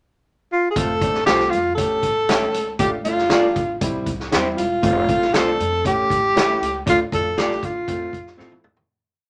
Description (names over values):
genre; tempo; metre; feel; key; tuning
uptempo 1960s-style soul; 118 BPM; 4/4; straight; F major; A4 = 439 Hz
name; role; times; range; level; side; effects
breathy tenor saxophone; melody; 0.5-8.4 s; F4 to A4; -22 LUFS; equal; none
clear grand piano; accompaniment; 0.8-8.6 s; G3 to A4; -29 LUFS; equal; none
upright bass; bass; 0.8-8.8 s; E1 to D3; -33 LUFS; equal; none
vintage drum kit; drums; 0.8-8.9 s; hi-hat, kick drum, snare drum, toms; -27 LUFS; equal; none
electric guitar through a small old amp; stabs; 1.3-8.5 s; C4 to D5; -25 LUFS; equal; none
room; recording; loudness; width
moderate club reverb, RT60 0.5 s; none; -20 LUFS; mono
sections
0.0-0.8 pickup bar; 0.8-8.9 A section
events
fade-out 6.9-8.9; drum fill 8.4-8.9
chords
0.0 N.C.; 0.8 F; 1.8 A7; 2.8 Dm; 3.8 C; 4.8 F; 5.8 A7; 6.9 Dm; 7.9 F